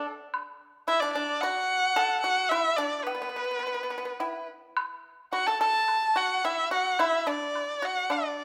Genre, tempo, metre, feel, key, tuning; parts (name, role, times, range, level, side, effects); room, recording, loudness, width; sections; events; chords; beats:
chinese traditional, Chinese chamber ensemble; 109 BPM; 4/4; rubato; D gong mode; A4 = 440 Hz
rich erhu; melody; 0.0-8.4 s; B4 to A5; -29 LUFS; equal
pipa; second line; 0.0-8.4 s; B3 to A4; -34 LUFS; equal
woodblock; percussion; 0.3-8.2 s; -37 LUFS; equal
moderate recital hall reverb, RT60 1.7 s; -28 LUFS; mono
0.0-8.4 A section
| 0.34 0.88 1.42 1.97 | 2.52 3.07 3.63 4.19 | 4.76 5.33 5.88 6.44 | 6.99 7.54 8.09